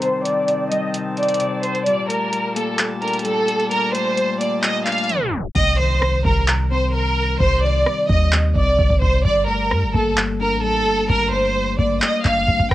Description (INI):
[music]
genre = hip hop, trap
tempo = 130 BPM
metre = 4/4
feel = half-time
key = C dorian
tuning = A4 = 438 Hz
[part]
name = rich chamber violin section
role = melody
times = 0.0-12.7 s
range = A4 to G5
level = -19 LUFS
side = right 1 dB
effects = low-pass filter, cassette tape, analog delay
[part]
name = muted felt-like synth keys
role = accompaniment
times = 0.0-12.7 s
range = C3 to D4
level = -26 LUFS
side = left 6 dB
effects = chorus, low-pass filter, cassette tape
[part]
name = accordion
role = sustained chords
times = 0.0-5.5 s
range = Bb2 to A5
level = -28 LUFS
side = left 1 dB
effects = low-pass filter, cassette tape
[part]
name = booming analog drum machine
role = drums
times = 0.0-12.7 s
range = crash cymbal, handclaps, hi-hat, kick drum, rim click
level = -22 LUFS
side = equal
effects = overdrive, cassette tape
[part]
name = downlifter, reverse cymbal and impact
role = sound effects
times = 0.0-7.4 s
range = none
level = -36 LUFS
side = left 1 dB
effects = none
[part]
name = clean 808-style bass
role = bass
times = 5.6-12.7 s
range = G1 to G2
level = -20 LUFS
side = equal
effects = none
[sound]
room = light reverb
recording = home recording on cassette, tape stop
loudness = -16 LUFS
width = side -15 dB against mid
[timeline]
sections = 0.0-5.6 A section; 5.6-12.7 B section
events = filter sweep 0.0-5.6; reverse cymbal 5.1-5.6; tape stop 5.1-5.6; hi-hats muted 5.6-12.7; impact 5.6-7.4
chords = 0.0 Cm; 1.9 Gmadd9; 5.6 Cm; 9.2 Gmadd9